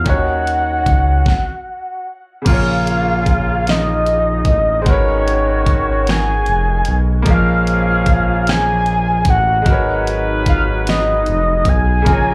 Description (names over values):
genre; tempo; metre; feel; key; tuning
slow six-eight R&B; 50 BPM (dotted quarters); 6/8; straight; G# dorian; A4 = 440 Hz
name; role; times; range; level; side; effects
soft octave-layered synth lead; melody; 0.0-12.3 s; B#4 to G#5; -20 LUFS; equal; chorus, slapback echo, tape echo
clear baby grand piano; accompaniment; 0.0-12.3 s; C#3 to C#5; -25 LUFS; equal; slapback echo
smooth synth bass; bass; 0.0-12.3 s; E#1 to D#2; -20 LUFS; equal; none
smooth R&B drum kit; drums; 0.1-12.2 s; crash cymbal, hi-hat, kick drum, snare drum; -19 LUFS; equal; none
warm horn section; stabs; 2.5-12.3 s; C#3 to B4; -29 LUFS; equal; slapback echo, tape echo
tonewheel organ; sustained chords; 12.1-12.3 s; C#3 to A#3; -28 LUFS; equal; none
room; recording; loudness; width
light reverb; live gig heard through the venue's PA, club reverb; -15 LUFS; mono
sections
0.0-2.5 A section; 2.5-12.3 B section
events
stop 1.3-2.5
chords
0.1 D#m7; 2.5 A#m7; 4.9 G#m11; 7.3 A#m7; 9.7 G#m11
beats
| 0.06 1.26 | 2.46 3.66 | 4.86 6.06 | 7.26 8.46 | 9.66 10.86 | 12.06